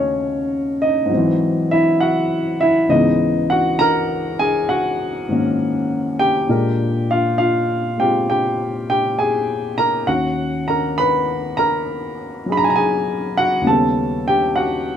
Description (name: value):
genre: solo jazz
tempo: 67 BPM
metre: 4/4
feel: swing 67% on 8ths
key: unclear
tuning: A4 = 439 Hz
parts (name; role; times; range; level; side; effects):
- warm upright piano; solo; 0.0-15.0 s; C#2 to B5; -16 LUFS; equal; none
room: moderate booth ambience, RT60 0.2 s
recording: none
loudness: -16 LUFS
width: side -9 dB against mid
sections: 0.0-15.0 A section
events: none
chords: 0.0 D#m7b5; 1.1 G#7b13; 2.9 C#m11; 6.5 A#7; 10.1 D#m7; 13.7 D#7alt